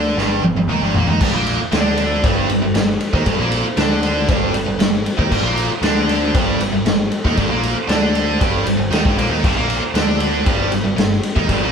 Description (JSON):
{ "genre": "quiet-loud alternative rock", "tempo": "117 BPM", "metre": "4/4", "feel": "straight", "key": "G minor", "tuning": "A4 = 440 Hz", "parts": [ { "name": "tight distorted guitar", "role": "riff", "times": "0.0-11.7 s", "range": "G2 to Eb4", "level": "-19 LUFS", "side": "right 1 dB", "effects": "distortion" }, { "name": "growling picked electric bass", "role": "bass", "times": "0.0-11.7 s", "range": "G1 to Eb2", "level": "-23 LUFS", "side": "left 1 dB", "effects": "overdrive" }, { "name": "raw garage drum kit", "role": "drums", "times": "0.2-11.6 s", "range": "crash cymbal, kick drum, ride cymbal, snare drum, toms", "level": "-18 LUFS", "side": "equal", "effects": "none" } ], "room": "light reverb", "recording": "band playing live in one room", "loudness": "-15 LUFS", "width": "side -6 dB against mid", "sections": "0.0-1.2 A section; 1.2-11.7 B section", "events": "drum fill 0.2-1.2", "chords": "0.0 Gm" }